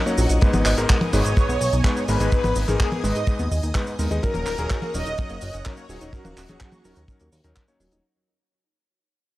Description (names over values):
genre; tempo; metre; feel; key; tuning
italo disco; 126 BPM; 4/4; straight; unclear; A4 = 441 Hz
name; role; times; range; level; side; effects
string machine, full ensemble; sustained chords; 0.0-8.0 s; B3 to D#6; -33 LUFS; right 1 dB; phaser, ensemble chorus
analog pluck; arpeggios; 0.0-8.0 s; F#3 to D#5; -32 LUFS; right 2 dB; chorus, tape echo
clear electric grand piano; stabs; 0.1-8.0 s; G#2 to D#5; -28 LUFS; left 2 dB; none
damped 70s drum kit; drums; 0.1-8.0 s; cabasa, handclaps, hi-hat, toms; -28 LUFS; equal; studio reverb
chorused synth bass; bass; 0.2-8.0 s; D#1 to G#2; -24 LUFS; equal; tube saturation
kick drum; drums; 0.4-7.7 s; none; -20 LUFS; equal; studio reverb
mellow synth brass; melody; 1.1-7.5 s; F#4 to D#5; -29 LUFS; equal; chorus, tape echo
room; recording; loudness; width
small room ambience; dry, gritty hardware recording, cassette tape; -19 LUFS; side -17 dB against mid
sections
0.0-8.0 A section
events
fade-out 0.4-8.0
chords
0.4 G#m; 4.2 D#m7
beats
| 0.42 0.90 1.37 1.85 | 2.32 2.80 3.28 3.75 | 4.23 4.71 5.18 5.66 | 6.13 6.61 7.09 7.56